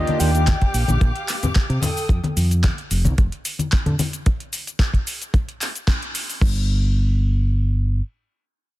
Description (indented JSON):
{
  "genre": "nu-disco, nu disco",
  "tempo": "111 BPM",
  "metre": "4/4",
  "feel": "straight",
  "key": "unclear",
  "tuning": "A4 = 440 Hz",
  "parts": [
    { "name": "soft octave-layered synth lead", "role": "melody", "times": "0.0-1.3 s", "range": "Eb5 to G5", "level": "-28 LUFS", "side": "left 2 dB", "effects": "chorus, cassette tape, analog delay" },
    { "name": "warm chamber string section", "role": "sustained chords", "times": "0.0-2.1 s", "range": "G4 to Eb6", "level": "-30 LUFS", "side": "left 1 dB", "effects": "sidechain pumping" },
    { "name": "fingered electric bass", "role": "bass", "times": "0.0-8.0 s", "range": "F1 to D3", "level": "-19 LUFS", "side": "equal", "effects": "none" },
    { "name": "pop drum kit", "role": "drums", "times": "0.1-6.5 s", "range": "crash cymbal, handclaps, hi-hat, shaker", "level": "-27 LUFS", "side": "left 1 dB", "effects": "overdrive" },
    { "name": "congas", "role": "percussion", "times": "0.1-4.1 s", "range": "none", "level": "-25 LUFS", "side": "left 2 dB", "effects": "none" },
    { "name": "kick drum", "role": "drums", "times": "0.5-6.5 s", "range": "none", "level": "-17 LUFS", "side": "equal", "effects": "none" }
  ],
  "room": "studio reverb",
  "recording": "dense, heavily limited modern master",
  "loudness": "-18 LUFS",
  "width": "side -17 dB against mid",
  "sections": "0.0-6.4 A section; 6.4-8.8 B section",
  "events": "drop 0.0-6.4; band accent 5.9",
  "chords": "0.0 Ebmaj9; 1.8 F9; 4.0 N.C."
}